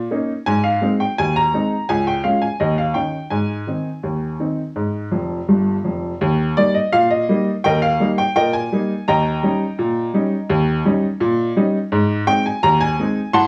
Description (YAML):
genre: ragtime piano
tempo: 84 BPM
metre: 2/4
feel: straight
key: Ab major, Eb major from 6.2 s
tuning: A4 = 440 Hz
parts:
  - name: clear upright piano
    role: solo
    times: 0.0-13.5 s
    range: F1 to C6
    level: -19 LUFS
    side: equal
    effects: none
room: wet studio reverb, RT60 0.6 s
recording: cassette tape, small room ambience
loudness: -19 LUFS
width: mono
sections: 0.0-6.2 A section; 6.2-13.5 B section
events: upright piano fill 5.1-6.2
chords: 0.5 Ab; 1.9 Db; 2.6 Eb7; 3.3 Ab; 6.2 Eb; 9.1 Eb7; 11.9 Ab